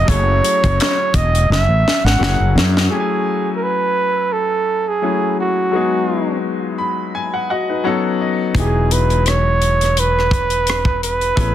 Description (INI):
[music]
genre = R&B, neo-soul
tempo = 85 BPM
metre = 4/4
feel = swing 54% on 16ths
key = F# dorian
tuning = A4 = 440 Hz
[part]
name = warm flugelhorn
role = melody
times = 0.0-11.5 s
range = F#4 to F#5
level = -18 LUFS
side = right 3 dB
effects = plate reverb, tape echo
[part]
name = bright upright piano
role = accompaniment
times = 0.0-11.5 s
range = F#3 to B5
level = -21 LUFS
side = left 5 dB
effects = none
[part]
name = fretless electric bass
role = bass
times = 0.0-2.9, 8.6-11.5 s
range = E1 to F#2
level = -16 LUFS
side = equal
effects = none
[part]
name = tight funk drum kit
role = drums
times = 0.1-2.9, 8.5-11.5 s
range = handclaps, hi-hat, kick drum, rim click, snare drum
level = -19 LUFS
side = left 1 dB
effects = soft clipping on kick
[sound]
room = moderate small room reverb, RT60 0.5 s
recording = dense, heavily limited modern master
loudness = -14 LUFS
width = side -11 dB against mid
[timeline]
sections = 0.0-2.9 A section; 2.9-11.5 B section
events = drum fill 1.5-2.9; upright piano fill 6.4-8.6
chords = 0.1 F#m7; 2.2 F#9; 2.9 F#m9; 5.7 G#m7; 7.8 B9; 8.6 Emaj9